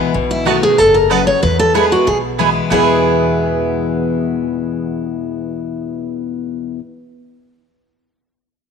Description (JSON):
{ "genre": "bluegrass", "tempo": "187 BPM", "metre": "4/4", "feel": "straight", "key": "E major", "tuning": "A4 = 440 Hz", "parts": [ { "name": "picked steel-string acoustic guitar", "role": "accompaniment", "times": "0.0-6.8 s", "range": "E2 to F#4", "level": "-18 LUFS", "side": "left 7 dB", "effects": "none" }, { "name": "upright bass", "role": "bass", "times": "0.1-6.7 s", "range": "F#1 to E2", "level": "-24 LUFS", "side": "right 1 dB", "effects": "none" }, { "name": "picked steel-string acoustic guitar", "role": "melody", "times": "0.3-6.7 s", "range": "E4 to C#5", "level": "-15 LUFS", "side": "right 1 dB", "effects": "slapback echo" }, { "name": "mandolin", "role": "stabs", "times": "0.5-6.8 s", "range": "B3 to A5", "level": "-20 LUFS", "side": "right 10 dB", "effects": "none" } ], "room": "wet echo chamber reverb, RT60 2.0 s", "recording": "1960s-style stereo with parts hard left and right", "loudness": "-13 LUFS", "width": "side -6 dB against mid", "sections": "0.1-2.7 A section; 2.7-5.3 B section", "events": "none", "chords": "0.1 B7; 1.4 E" }